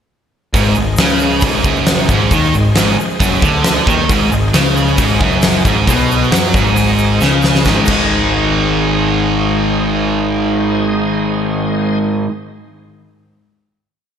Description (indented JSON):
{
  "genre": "classic rock",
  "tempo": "135 BPM",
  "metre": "4/4",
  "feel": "straight",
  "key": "Ab major",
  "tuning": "A4 = 440 Hz",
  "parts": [
    { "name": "bright tonewheel organ", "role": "sustained chords", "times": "0.5-12.0 s", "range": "Ab4 to Eb5", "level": "-24 LUFS", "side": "equal", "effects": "slow rotary speaker, chorus vibrato" },
    { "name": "overdriven electric guitar", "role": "riff", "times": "0.5-12.3 s", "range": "Gb2 to Ab3", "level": "-16 LUFS", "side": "right 7 dB", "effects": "none" },
    { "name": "fuzz picked electric bass", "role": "bass", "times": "0.5-12.2 s", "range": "Gb1 to Gb2", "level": "-19 LUFS", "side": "equal", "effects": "overdrive" },
    { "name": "huge arena drum kit", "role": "drums", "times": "0.5-8.0 s", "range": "crash cymbal, hi-hat, kick drum, snare drum", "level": "-16 LUFS", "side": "equal", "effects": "none" },
    { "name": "crunchy overdriven guitar", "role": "riff", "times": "0.6-12.3 s", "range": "Gb2 to Ab3", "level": "-17 LUFS", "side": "left 6 dB", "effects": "none" },
    { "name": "egg shaker", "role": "percussion", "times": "0.6-8.0 s", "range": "none", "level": "-31 LUFS", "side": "left 4 dB", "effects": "none" }
  ],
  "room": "moderate concert hall reverb, RT60 2.0 s, studio reverb",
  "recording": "big arena sound",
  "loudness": "-11 LUFS",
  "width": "side -8 dB against mid",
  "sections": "0.5-7.7 riff; 7.7-11.2 final chord",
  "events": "drum fill 7.2-7.7",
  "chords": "0.5 Ab"
}